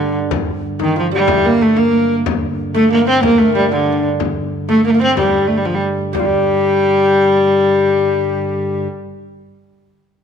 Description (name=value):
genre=medieval dance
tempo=124 BPM (dotted quarters)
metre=6/8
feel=straight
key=G minor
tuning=A4 = 440 Hz
part: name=rich viola da gamba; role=melody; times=0.0-8.8 s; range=D3 to C4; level=-15 LUFS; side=right 2 dB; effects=none
part: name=bright reedy tenor recorder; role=second line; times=0.0-8.9 s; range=D4 to C5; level=-18 LUFS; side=left 10 dB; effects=none
part: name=lute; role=second line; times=0.0-9.5 s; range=D3 to C4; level=-24 LUFS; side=right 7 dB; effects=none
part: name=pipe organ, flutes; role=drone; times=0.0-8.9 s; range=G2 to D3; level=-24 LUFS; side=right 1 dB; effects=none
part: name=frame drum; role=percussion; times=0.2-6.3 s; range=none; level=-24 LUFS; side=left 7 dB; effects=none
room=moderate echo chamber reverb, RT60 1.7 s, small room ambience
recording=1960s-style stereo with parts hard left and right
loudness=-12 LUFS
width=side -7 dB against mid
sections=0.0-6.2 A section; 6.2-8.1 B section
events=none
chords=none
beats=| 0.31 0.80 | 1.29 1.78 | 2.26 2.75 | 3.24 3.72 | 4.21 4.69 | 5.18 5.67 | 6.15 6.63 | 7.12 7.60